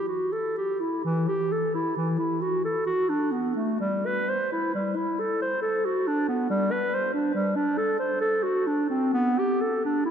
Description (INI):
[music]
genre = classical, baroque-style fantasia for unaccompanied clarinet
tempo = 67 BPM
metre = 3/4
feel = uneven beats, rubato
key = E minor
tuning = A4 = 440 Hz
[part]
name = warm clarinet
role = solo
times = 0.0-10.1 s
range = E3 to C5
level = -24 LUFS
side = equal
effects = none
[sound]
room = wet cathedral reverb, RT60 4.5 s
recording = dark, warm production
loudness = -24 LUFS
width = side -8 dB against mid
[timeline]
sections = 0.0-1.1 A section; 1.1-10.1 B section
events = none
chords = none